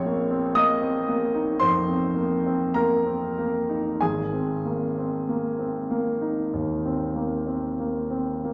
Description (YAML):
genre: classical, impressionist solo piano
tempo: 45-60 BPM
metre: 4/4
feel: rubato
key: Ab major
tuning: A4 = 441 Hz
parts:
  - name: clear concert grand piano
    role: solo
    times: 0.0-8.5 s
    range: Ab1 to Eb6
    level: -25 LUFS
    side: equal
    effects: none
room: wet recital hall reverb, RT60 1.4 s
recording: none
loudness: -25 LUFS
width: mono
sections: 0.0-8.5 A section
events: none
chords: 0.0 Bbmadd9; 4.0 Abadd9